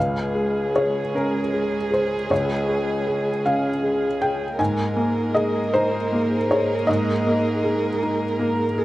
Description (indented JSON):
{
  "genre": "neoclassical piano and strings",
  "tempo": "52 BPM (dotted quarters)",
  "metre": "6/8",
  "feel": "rubato",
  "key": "unclear",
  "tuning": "A4 = 440 Hz",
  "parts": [
    { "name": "felt-muted upright piano", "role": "accompaniment", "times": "0.0-8.8 s", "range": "Db2 to Ab5", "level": "-21 LUFS", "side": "left 1 dB", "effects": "none" },
    { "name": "rich viola", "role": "accompaniment", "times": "0.0-8.8 s", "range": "Ab4 to Bb4", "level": "-27 LUFS", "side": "right 4 dB", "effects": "none" },
    { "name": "rich chamber string section", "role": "sustained chords", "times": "0.0-8.8 s", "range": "Ab3 to Ab4", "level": "-31 LUFS", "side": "right 2 dB", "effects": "none" }
  ],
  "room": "little or no reverb",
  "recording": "recorded outdoors, with no room sound",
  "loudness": "-20 LUFS",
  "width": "side -16 dB against mid",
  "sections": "0.0-8.8 A section",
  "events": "none",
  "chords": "0.0 Db; 4.6 Absus2"
}